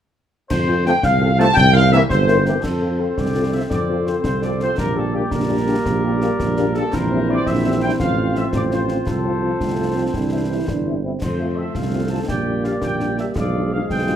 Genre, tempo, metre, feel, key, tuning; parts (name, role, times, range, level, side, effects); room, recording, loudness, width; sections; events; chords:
military-style march for wind band; 112 BPM (dotted quarters); 6/8; straight; F major; A4 = 440 Hz
dark trumpet section; melody; 0.5-14.2 s; G4 to A5; -24 LUFS; equal
warm woodwind section; second line; 0.5-14.2 s; E4 to A5; -25 LUFS; left 3 dB
mellow tuba; bass; 0.5-14.2 s; G1 to F2; -21 LUFS; right 2 dB
concert snare drum, clash cymbals and concert bass drum; drums; 0.5-14.2 s; -27 LUFS; left 1 dB
dark French horn section; accompaniment; 0.7-14.1 s; F3 to Bb4; -25 LUFS; left 4 dB
dark trombone section; sustained chords; 0.9-14.2 s; E3 to C4; -26 LUFS; right 2 dB
mellow euphonium; second line; 9.6-11.2 s; A3 to E4; -26 LUFS; right 6 dB
moderate large studio reverb, RT60 0.8 s; -17 LUFS; side -9 dB against mid
0.5-2.6 A section; 2.6-14.2 B section
0.5 F; 1.6 C7; 2.6 F; 4.8 Gm/Bb; 6.9 C7/Bb; 8.0 F/A; 9.1 F/C; 10.2 C; 11.2 F; 12.3 Gm/Bb; 13.4 Bdim7